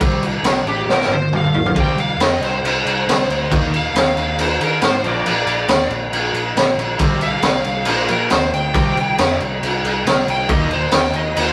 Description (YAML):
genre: hard rock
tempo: 137 BPM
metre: 4/4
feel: straight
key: C minor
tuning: A4 = 440 Hz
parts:
  - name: percussive tonewheel organ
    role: sustained chords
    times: 0.0-11.5 s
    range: none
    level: barely audible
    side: none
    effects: none
  - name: overdriven semi-hollow guitar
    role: riff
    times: 0.0-10.7 s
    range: G2 to Eb4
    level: -29 LUFS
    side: equal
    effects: none
  - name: picked electric bass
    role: bass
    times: 0.0-11.5 s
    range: G1 to Eb3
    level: -28 LUFS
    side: equal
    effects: none
  - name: raw garage drum kit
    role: drums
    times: 0.0-11.5 s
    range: crash cymbal, kick drum, snare drum, toms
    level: -19 LUFS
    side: equal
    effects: none
  - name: smooth overdriven lead guitar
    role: melody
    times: 0.7-11.5 s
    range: G4 to G5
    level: -24 LUFS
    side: equal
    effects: none
  - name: high-gain distorted guitar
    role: riff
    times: 1.8-10.7 s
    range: Bb2 to Eb4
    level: -30 LUFS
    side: equal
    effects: distortion
room: light reverb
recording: rough rehearsal-room recording, tube saturation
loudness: -17 LUFS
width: mono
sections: 0.0-11.5 A section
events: lead electric guitar solo 0.0-11.5; drum fill 0.9-1.8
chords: 0.0 C5; 0.9 Bb5; 1.3 G5; 1.8 C5; 3.5 Eb; 5.0 Bb; 7.0 C5; 7.9 Bb; 8.8 C5; 10.5 Eb